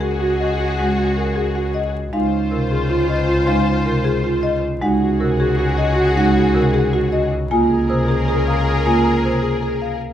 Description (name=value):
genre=classical, minimalist pattern music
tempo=312 BPM (eighths)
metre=7/8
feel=straight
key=unclear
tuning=A4 = 439 Hz
part: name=marimba with medium mallets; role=melody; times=0.0-10.1 s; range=Ab4 to Ab5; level=-25 LUFS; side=left 7 dB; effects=none
part: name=mellow clarinet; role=second line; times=0.0-10.0 s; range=F4 to Ab4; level=-25 LUFS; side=right 1 dB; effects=none
part: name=warm symphonic violin section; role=sustained chords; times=0.0-10.0 s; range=F4 to C5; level=-24 LUFS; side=left 3 dB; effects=none
part: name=marimba with medium mallets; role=arpeggios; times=0.0-9.9 s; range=Eb4 to C5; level=-23 LUFS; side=right 4 dB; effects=none
part: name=clear double bass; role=bass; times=0.0-10.1 s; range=Db2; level=-22 LUFS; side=equal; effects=none
part: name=marimba with medium mallets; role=accompaniment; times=0.8-9.5 s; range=C3 to Bb3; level=-22 LUFS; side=equal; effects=none
room=wet large studio reverb, RT60 0.9 s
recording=heard from further back in the room, vinyl crackle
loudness=-16 LUFS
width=side -10 dB against mid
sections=0.0-10.1 A section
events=none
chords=0.0 Ab7sus4/Db; 2.1 Dbmaj9; 4.8 Ab9sus4/Db; 7.5 Bbm7/Db